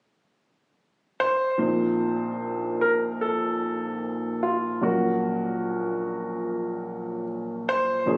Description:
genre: pop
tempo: 74 BPM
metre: 4/4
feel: straight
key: unclear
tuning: A4 = 440 Hz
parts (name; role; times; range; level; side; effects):
- bright concert grand piano; melody; 1.2-8.2 s; F4 to C5; -29 LUFS; equal; none
- clear upright piano; accompaniment; 1.6-8.2 s; Bb1 to C5; -29 LUFS; equal; none
room: moderate plate reverb, RT60 2.8 s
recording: recorded on a phone in the room, club reverb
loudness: -26 LUFS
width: mono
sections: 0.0-1.6 A section; 1.6-8.2 B section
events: none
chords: 0.0 N.C.; 1.6 F7/Bb; 4.8 Gb/Bb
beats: 0.78 | 1.59 2.40 3.21 4.03 | 4.84 5.65 6.46 7.27 | 8.08

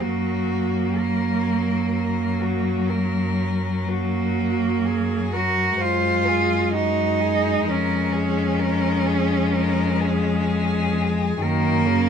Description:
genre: classical, lyrical piece for cello ensemble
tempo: 63 BPM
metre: 4/4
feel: uneven beats, rubato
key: Db major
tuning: A4 = 441 Hz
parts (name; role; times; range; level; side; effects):
- clear cello; melody; 0.0-12.1 s; Gb4 to C5; -29 LUFS; left 5 dB; none
- clear cello; second line; 0.0-12.1 s; Bb3 to Gb4; -23 LUFS; right 5 dB; none
- clear cello; accompaniment; 0.0-12.1 s; Db3 to Ab3; -26 LUFS; left 5 dB; none
- clear cello; bass; 0.0-12.1 s; F2 to Gb2; -25 LUFS; equal; none
room: moderate studio reverb, RT60 0.9 s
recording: minimal, uncompressed stereo recording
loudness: -19 LUFS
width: side -7 dB against mid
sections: 0.0-12.1 A section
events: none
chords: 0.0 Gb; 5.8 Ab5/Gb; 7.7 Db/F; 11.4 Ebm7/Gb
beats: | 0.01 0.99 1.96 2.90 | 3.88 4.85 5.80 6.74 | 7.67 8.59 9.53 10.47 | 11.41

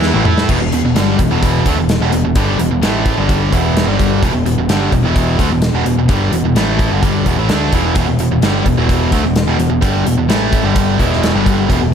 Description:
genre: hard rock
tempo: 128 BPM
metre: 4/4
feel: straight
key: E minor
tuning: A4 = 437 Hz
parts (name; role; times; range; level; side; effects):
- overdriven tonewheel organ; sustained chords; 0.0-0.5 s; A3 to B4; -30 LUFS; equal; none
- sludgy distorted guitar; riff; 0.0-11.9 s; E2 to A4; -18 LUFS; left 11 dB; overdrive
- tight distorted guitar; riff; 0.0-11.9 s; E2 to A4; -17 LUFS; right 12 dB; distortion
- picked electric bass; bass; 0.0-11.9 s; E1 to A2; -18 LUFS; equal; none
- gated 80s drum kit; drums; 0.0-11.8 s; crash cymbal, hi-hat, kick drum, snare drum, toms; -17 LUFS; equal; none
room: small room ambience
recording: none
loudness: -12 LUFS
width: side -8 dB against mid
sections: 0.5-11.9 A section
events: drum fill 0.0-0.5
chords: 0.5 Em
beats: 0.02 | 0.49 0.95 1.42 1.89 | 2.36 2.82 3.29 3.76 | 4.22 4.69 5.16 5.62 | 6.09 6.55 7.02 7.49 | 7.96 8.42 8.89 9.36 | 9.82 10.29 10.76 11.22 | 11.69

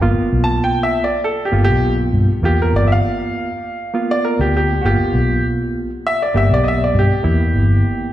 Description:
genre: blues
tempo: 100 BPM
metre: 4/4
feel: straight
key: G mixolydian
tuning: A4 = 440 Hz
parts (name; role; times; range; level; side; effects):
- bright reed electric piano; accompaniment; 0.0-8.1 s; A#3 to G4; -21 LUFS; right 2 dB; medium tremolo, slapback echo
- vintage muted fingered electric bass; bass; 0.0-7.8 s; G1 to G2; -15 LUFS; equal; none
- clear upright piano; second line; 0.4-8.1 s; F#4 to A5; -19 LUFS; equal; slapback echo
room: light reverb, digital ambience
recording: live gig heard through the venue's PA, recital hall reverb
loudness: -14 LUFS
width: side -13 dB against mid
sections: 0.0-8.1 A section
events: upright piano solo 0.0-8.1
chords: 0.0 G7#9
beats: | 0.01 0.62 1.22 1.82 | 2.43 3.03 3.63 4.24 | 4.84 5.44 6.04 6.65 | 7.25 7.85

